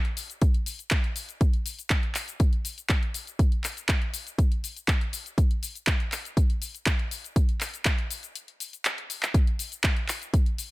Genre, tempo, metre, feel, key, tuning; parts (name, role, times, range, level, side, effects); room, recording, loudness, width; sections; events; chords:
house; 121 BPM; 4/4; straight
house drum kit; drums; 0.0-10.7 s; handclaps, hi-hat, shaker; -30 LUFS; left 1 dB; sidechain pumping on hats, sidechain pumping on perc
electronic kick drum; drums; 0.4-10.4 s; -23 LUFS; equal
little or no reverb; -24 LUFS; side -20 dB against mid
0.0-10.7 A section
break 8.4-9.3; drum fill 8.8-9.3